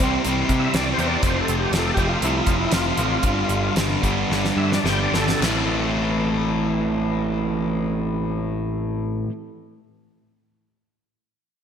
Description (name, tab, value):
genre	classic rock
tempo	103-122 BPM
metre	4/4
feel	straight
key	A minor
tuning	A4 = 439 Hz
part	overdriven tonewheel organ	melody	0.0-5.4 s	C4 to G5	-26 LUFS	equal	slow rotary speaker, chorus vibrato
part	cranked stack guitar	riff	0.0-9.3 s	F2 to C4	-25 LUFS	left 8 dB	overdrive, slapback echo
part	crunchy overdriven guitar	riff	0.0-9.3 s	G2 to F4	-25 LUFS	right 7 dB	none
part	growling picked electric bass	bass	0.0-9.2 s	F1 to C3	-26 LUFS	equal	overdrive
part	damped 70s drum kit	drums	0.0-5.6 s	crash cymbal, hi-hat, kick drum, snare drum	-25 LUFS	equal	none
room	moderate scoring stage reverb, RT60 1.7 s, small room reverb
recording	big arena sound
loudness	-19 LUFS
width	side -8 dB against mid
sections	0.0-5.4 A section; 5.4-10.1 B section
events	tonewheel organ solo 0.0-5.4; slowing down 1.2-5.4; drum fill 4.3-5.4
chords	0.0 C; 1.2 F; 3.2 G; 5.4 Am